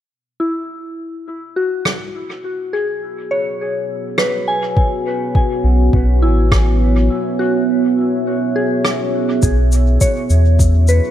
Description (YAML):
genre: ambient dub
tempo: 103 BPM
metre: 4/4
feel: swing 54% on 16ths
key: unclear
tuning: A4 = 440 Hz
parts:
  - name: deep dark ambient pad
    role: sustained chords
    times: 3.9-11.1 s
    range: B3 to E5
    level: -19 LUFS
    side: right 2 dB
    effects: chorus, built-in reverb
  - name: soft synth bell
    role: arpeggios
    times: 0.4-11.1 s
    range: E4 to G#5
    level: -21 LUFS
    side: left 2 dB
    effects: chorus, low-pass filter, dub echo
  - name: rim click and shaker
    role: drums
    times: 1.9-11.0 s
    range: none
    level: -22 LUFS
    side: right 1 dB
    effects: dub echo
  - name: electronic kick drum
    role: drums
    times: 4.8-10.7 s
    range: none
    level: -15 LUFS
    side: equal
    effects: none
  - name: soft dub sub bass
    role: bass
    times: 5.6-11.0 s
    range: A1 to E2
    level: -12 LUFS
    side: equal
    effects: tube saturation
room: light reverb, studio ambience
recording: none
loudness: -14 LUFS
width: side -11 dB against mid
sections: 0.1-9.4 A section; 9.4-11.1 B section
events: filter sweep on synth bell 0.1-9.4, 9.4-11.1; break 7.1-9.4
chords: 0.1 Bsus4